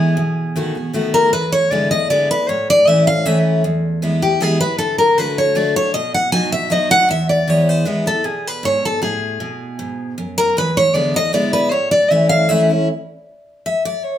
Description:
bluegrass; 156 BPM; 3/4; straight; A4 = 436 Hz
picked steel-string acoustic guitar; melody; 0.0-12.6 s; G4 to G#5; -16 LUFS; equal
picked steel-string acoustic guitar; accompaniment; 0.0-14.2 s; E2 to E5; -18 LUFS; equal
wet studio reverb, RT60 0.8 s; band playing live in one room; -14 LUFS; side -11 dB against mid
0.0-3.6 A section; 3.6-12.9 A section; 12.9-14.2 B section
steel-string acoustic guitar solo 12.9-14.2
0.2 B7; 1.3 E7; 2.5 A; 3.6 E; 4.8 D; 5.9 B; 7.1 E; 9.4 B5; 10.6 E7; 11.7 A; 12.9 N.C.
| 0.17 0.56 0.94 | 1.33 1.72 2.10 | 2.48 2.87 3.25 | 3.64 4.02 4.41 | 4.79 5.18 5.56 | 5.95 6.33 6.71 | 7.10 7.48 7.87 | 8.25 8.64 9.02 | 9.41 9.79 10.18 | 10.56 10.95 11.33 | 11.72 12.11 12.49 | 12.88 13.26 13.65 | 14.04

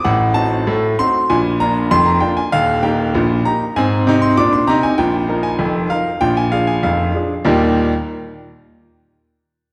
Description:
ragtime piano; 97 BPM; 2/4; straight; Eb major; A4 = 440 Hz
clear concert grand piano; solo; 0.0-7.9 s; Eb1 to D6; -16 LUFS; equal
wet scoring stage reverb, RT60 1.4 s; recorded in a church or concert hall; -16 LUFS; mono
0.0-7.5 A section; 7.5-8.7 B section
0.1 Adim7; 1.3 Bb; 2.5 Eb; 3.8 Ab; 5.0 Bbsus4; 6.2 Bb7; 7.5 Eb
| 0.06 0.68 | 1.30 1.91 | 2.53 3.14 | 3.76 4.37 | 4.99 5.60 | 6.22 6.84 | 7.46

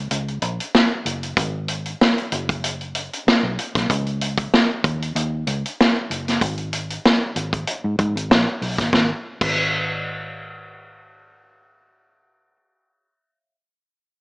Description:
lush 1970s-style soul; 95 BPM; 4/4; swing 54% on 16ths; A4 = 441 Hz
vintage muted fingered electric bass; bass; 0.0-12.6 s; F#1 to G#2; -26 LUFS; equal
vintage drum kit; drums; 0.1-9.6 s; crash cymbal, hi-hat, kick drum, snare drum; -19 LUFS; equal
light reverb; small speaker sound; -18 LUFS; side -29 dB against mid
0.0-8.9 A section; 8.9-11.5 B section
0.11 0.74 | 1.38 2.00 2.63 3.26 | 3.89 4.52 5.15 5.78 | 6.41 7.04 7.67 8.30 | 8.93 9.56 10.19 10.82

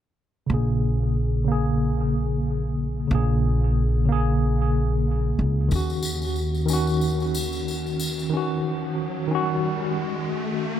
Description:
trip hop; 92 BPM; 4/4; swing 57% on 16ths; Bb minor; A4 = 441 Hz
barky tine electric piano; accompaniment; 0.5-10.8 s; Db3 to Ab4; -24 LUFS; equal; medium stereo tremolo, harmonic tremolo, vintage 12-bit sampler grit, low-pass filter, tape echo
upright bass; bass; 0.5-8.3 s; Bb1 to Eb2; -24 LUFS; equal; tube saturation
tambourine and triangle; percussion; 5.7-8.3 s; -34 LUFS; left 3 dB; dub echo
riser; sound effects; 8.1-10.8 s; -33 LUFS; left 2 dB
light reverb, small room ambience; echo-heavy mix; -21 LUFS; side -10 dB against mid
0.5-10.8 A section
filter sweep on tine electric piano 0.5-10.8; riser 8.1-10.8
0.5 Bbm7; 5.7 Ebm7
| 0.49 1.15 1.80 2.45 | 3.10 3.76 4.41 5.06 | 5.71 6.37 7.02 7.67 | 8.32 8.97 9.63 10.28

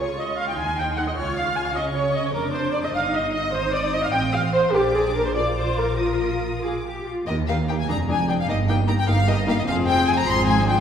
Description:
quick classical-period movement for string orchestra; 100 BPM (dotted quarters); 6/8; rubato; Eb major; A4 = 442 Hz
rich chamber violin section; melody; 0.0-10.8 s; Eb5 to F6; -27 LUFS; left 4 dB
clear chamber violin section; second line; 0.0-10.8 s; F4 to Ab5; -30 LUFS; left 3 dB
warm chamber viola section; accompaniment; 0.0-10.8 s; F3 to Ab5; -24 LUFS; equal
rich studio cello section; bass; 0.0-10.8 s; Eb2 to Bb4; -28 LUFS; right 2 dB
rich studio double bass section; bass; 0.0-10.8 s; F1 to Db3; -26 LUFS; right 2 dB
wet concert hall reverb, RT60 1.6 s; heard from further back in the room; -20 LUFS; side -8 dB against mid
0.0-7.3 A section; 7.3-10.8 B section
0.0 Db; 0.6 Abmaj7/Eb; 1.2 Db; 2.3 C9sus4/F; 2.9 Eb/G; 3.5 Ab6; 4.1 F9/A; 4.7 Bb; 6.0 Bbsus4; 6.6 Bb; 7.3 Eb; 7.9 Ddim/F; 8.5 Eb/G; 9.7 Fm; 10.3 Fm/Ab
0.58 | 1.17 1.76 | 2.35 2.94 | 3.54 4.14 | 4.74 5.36 | 6.00 6.65 | 7.29 7.90 | 8.49 9.08 | 9.67 10.28

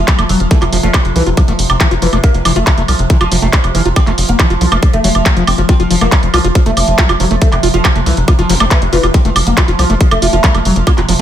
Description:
psychedelic trance; 139 BPM; 4/4; straight; F major; A4 = 444 Hz
oud; melody; 0.0-11.2 s; C3 to C4; -18 LUFS; equal; phaser, sidechain pumping, tape echo
pulsing gated texture; sustained chords; 0.0-11.2 s; F3; -22 LUFS; left 1 dB; chorus, built-in reverb, sidechain pumping
tight sequencer bass; bass; 0.0-11.2 s; F1 to C2; -15 LUFS; equal
screaming distorted acid line; riff; 0.1-11.2 s; E3 to F4; -18 LUFS; moving between left 7 dB and right 9 dB; distortion, chorus, auto-pan, sidechain pumping, dub echo
drum and bass drum kit; drums; 0.1-11.2 s; handclaps, hi-hat, woodblock; -16 LUFS; right 2 dB; studio reverb
electronic kick drum; drums; 0.1-11.0 s; -11 LUFS; equal; studio reverb
zap; sound effects; 8.5-8.6 s; -27 LUFS; left 1 dB
little or no reverb; -9 LUFS; side -10 dB against mid
0.0-11.2 A section
0.0 F5
0.08 | 0.51 0.94 1.37 1.80 | 2.24 2.67 3.10 3.53 | 3.96 4.39 4.83 5.26 | 5.69 6.12 6.55 6.98 | 7.42 7.85 8.28 8.71 | 9.14 9.57 10.01 10.44 | 10.87

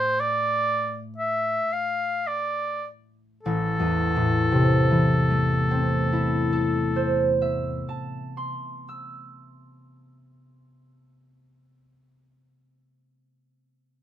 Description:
classical, romantic duo for oboe and harp; 32-43 BPM (dotted quarters); 12/8; rubato; A minor; A4 = 441 Hz
clear oboe; melody; 0.0-7.4 s; A4 to F5; -25 LUFS; equal
concert harp; accompaniment; 0.0-11.5 s; A1 to E6; -23 LUFS; equal
moderate studio reverb, RT60 0.5 s; minimal, uncompressed stereo recording; -22 LUFS; side -11 dB against mid
0.0-3.5 A section; 3.5-10.1 B section
slowing down 0.0-3.5
0.0 N.C.; 3.5 Am
0.21 1.72 | 3.46 5.13 6.76 8.42

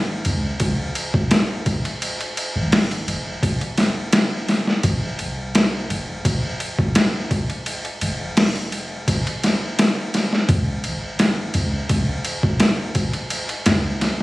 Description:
trip hop; 85 BPM; 4/4; straight; A4 = 440 Hz
soft 808-style bass; bass; 0.0-14.2 s; F1 to Db2; -25 LUFS; equal
boom bap sampler-style drum kit; drums; 0.2-14.2 s; hi-hat, kick drum, ride cymbal, snare drum; -20 LUFS; equal; overdrive
light reverb, digital ambience; recorded on a phone in the room, club reverb; -18 LUFS; side -19 dB against mid
0.0-14.2 A section
| 0.60 1.31 2.01 2.72 | 3.42 4.13 4.84 5.54 | 6.25 6.95 7.66 8.37 | 9.07 9.78 10.48 11.19 | 11.89 12.60 13.31 14.01

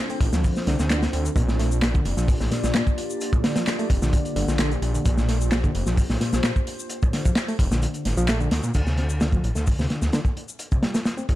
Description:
breakbeat, breaks; 130 BPM; 4/4; straight; D minor; A4 = 443 Hz
dark analog pad; sustained chords; 0.0-8.7 s; Bb3 to D5; -31 LUFS; equal; chorus, phaser, sidechain pumping
barky reed electric piano; riff; 0.1-11.3 s; A2 to C4; -28 LUFS; equal; overdrive, fast tremolo, vintage 12-bit sampler grit, low-pass filter, dub echo
punchy analog drum machine; drums; 0.1-11.3 s; handclaps, hi-hat, shaker; -33 LUFS; equal
detuned saw bass; bass; 0.2-11.4 s; F1 to Bb2; -24 LUFS; equal
crunchy breakbeat drum kit; drums; 0.2-11.4 s; crash cymbal, hi-hat, kick drum, snare drum; -23 LUFS; equal
small room ambience; dark, warm production; -20 LUFS; side -15 dB against mid
0.0-8.7 A section; 8.7-11.4 B section
drop 0.0-8.7; kick drops out 7.8-8.7; filter sweep on reed electric piano 8.7-11.4
0.0 Dm7; 1.4 Bb6; 8.7 D7(no3)
0.44 0.90 | 1.36 1.82 2.28 2.75 | 3.21 3.67 4.13 4.59 | 5.05 5.51 5.98 6.44 | 6.90 7.36 7.82 8.28 | 8.74 9.21 9.67 10.13 | 10.59 11.05

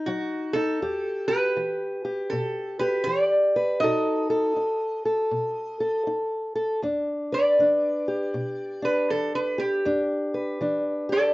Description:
acoustic country blues, solo or duo; 80 BPM; 4/4; swing 64% on 8ths; E minor; A4 = 442 Hz
fingerpicked old ladder-braced acoustic guitar; accompaniment; 0.0-11.3 s; E2 to B4; -26 LUFS; left 1 dB
lap resonator guitar; melody; 0.1-11.3 s; F#4 to D#5; -24 LUFS; right 1 dB
light reverb; worn, warbling old tape, cassette tape, warbly pitch drift, nothing above 7.7 kHz; -23 LUFS; side -19 dB against mid
0.0-6.8 A section; 6.8-11.3 B section
resonator guitar played with a steel bar solo 6.8-11.3
0.0 B (rootless); 0.8 Em7; 3.8 B7; 6.8 Em7
0.07 | 0.82 1.57 2.32 3.07 | 3.82 4.57 5.32 6.07 | 6.83 7.58 8.34 9.10 | 9.85 10.61

